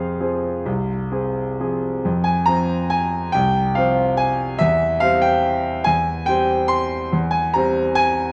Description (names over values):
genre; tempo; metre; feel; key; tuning
classical, piano waltz; 125-150 BPM; 3/4; rubato; F minor; A4 = 438 Hz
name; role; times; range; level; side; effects
clear concert grand piano; solo; 0.0-8.3 s; C2 to F6; -20 LUFS; equal; none
room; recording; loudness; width
moderate recital hall reverb, RT60 1.5 s; worn, warbling old tape, cassette tape, warbly pitch drift; -20 LUFS; mono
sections
0.0-2.1 A section; 2.1-8.3 B section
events
none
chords
0.0 Fm; 4.6 C/E